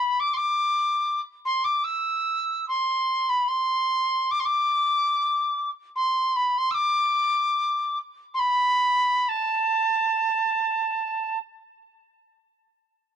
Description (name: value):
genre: celtic folk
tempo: 46-76 BPM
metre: 3/4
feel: rubato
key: unclear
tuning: A4 = 441 Hz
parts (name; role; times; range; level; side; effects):
- tin whistle; solo; 0.0-11.4 s; A5 to E6; -22 LUFS; equal; none
room: small room ambience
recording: dry, close 1970s-style studio recording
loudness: -22 LUFS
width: side -9 dB against mid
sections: 0.0-12.6 A section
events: slowing down 6.8-12.6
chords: none